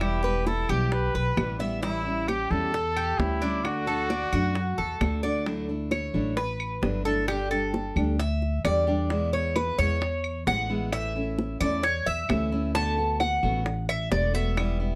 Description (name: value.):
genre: latin, Cuban son and guajira.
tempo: 132 BPM.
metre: 4/4.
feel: straight.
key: D major.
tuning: A4 = 440 Hz.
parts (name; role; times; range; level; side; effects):
clear trumpet; melody; 0.0-5.0 s; E4 to B4; -32 LUFS; equal; none.
fingerpicked steel-string acoustic guitar; accompaniment; 0.0-15.0 s; B2 to G4; -34 LUFS; equal; none.
Cuban tres; arpeggios; 0.0-15.0 s; D4 to A5; -32 LUFS; equal; none.
upright bass; bass; 0.0-15.0 s; E1 to F#2; -31 LUFS; equal; none.
bongos; percussion; 0.0-14.8 s; none; -33 LUFS; equal; none.
claves; percussion; 0.0-14.8 s; none; -38 LUFS; equal; none.
room: light reverb.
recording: close, detailed microphones.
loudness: -27 LUFS.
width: mono.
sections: 0.0-5.5 A section; 5.5-15.0 B section.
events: Cuban tres solo 5.5-15.0.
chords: 0.0 Em; 1.8 A7; 3.6 D; 5.5 Dadd9; 7.3 Gsus2; 9.1 E; 10.9 A; 12.8 D6.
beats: | 0.01 0.47 0.92 1.37 | 1.83 2.28 2.74 3.19 | 3.64 4.10 4.55 5.01 | 5.46 5.92 6.37 6.83 | 7.28 7.74 8.19 8.65 | 9.10 9.56 10.02 10.47 | 10.93 11.38 11.84 12.29 | 12.75 13.21 13.66 14.12 | 14.57.